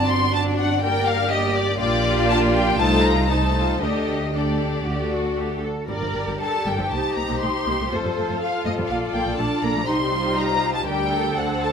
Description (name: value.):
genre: quick classical-period movement for string orchestra.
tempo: 119 BPM.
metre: 4/4.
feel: uneven beats, rubato.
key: G minor.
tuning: A4 = 440 Hz.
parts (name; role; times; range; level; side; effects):
warm studio violin section; melody; 0.0-11.7 s; C5 to C6; -24 LUFS; left 3 dB; none.
warm studio violin section; second line; 0.0-11.7 s; F#4 to D5; -27 LUFS; left 3 dB; none.
rich studio viola section; accompaniment; 0.0-11.7 s; D3 to F4; -27 LUFS; equal; none.
rich studio cello section; bass; 0.0-11.7 s; C4 to Bb4; -27 LUFS; right 2 dB; none.
rich studio double bass section; bass; 0.0-11.7 s; G1 to F2; -26 LUFS; right 2 dB; none.
room: moderate scoring stage reverb, RT60 2.0 s.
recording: none.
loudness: -19 LUFS.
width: side -7 dB against mid.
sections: 0.0-11.7 A section.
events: none.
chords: 0.0 D7/G; 0.8 Gm; 1.8 Gm/Bb; 2.8 Adim/C; 3.8 Dsus4; 4.9 D; 5.9 Gm; 6.9 Cm7; 7.9 F; 8.9 Bbmaj7; 9.9 Cm; 10.9 Gm/D.